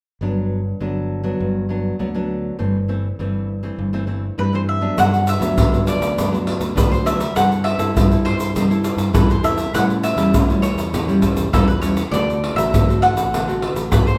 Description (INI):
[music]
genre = samba and choro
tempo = 101 BPM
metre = 4/4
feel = straight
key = G major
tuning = A4 = 440 Hz
[part]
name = nylon-string guitar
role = accompaniment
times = 0.2-14.2 s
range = G2 to A4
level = -24 LUFS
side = equal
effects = none
[part]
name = fingered electric bass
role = bass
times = 0.2-14.2 s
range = G1 to A2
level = -26 LUFS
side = equal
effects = none
[part]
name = mandolin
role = melody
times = 4.4-14.2 s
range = A4 to F#5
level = -24 LUFS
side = equal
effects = none
[part]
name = egg shaker, surdo and pandeiro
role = percussion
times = 5.0-14.2 s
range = none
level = -22 LUFS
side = equal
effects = none
[sound]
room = wet large studio reverb, RT60 1.1 s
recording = band playing live in one room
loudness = -19 LUFS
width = mono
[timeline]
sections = 0.2-5.0 A section; 5.0-14.2 B section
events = none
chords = 0.2 Gmaj7; 2.6 C6/G; 5.0 Gmaj7; 7.4 C6/G; 9.7 A7; 12.1 D7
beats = | 0.21 0.81 1.41 2.00 | 2.60 3.19 3.79 4.38 | 4.98 5.57 6.17 6.76 | 7.36 7.95 8.55 9.14 | 9.74 10.33 10.93 11.53 | 12.12 12.71 13.31 13.90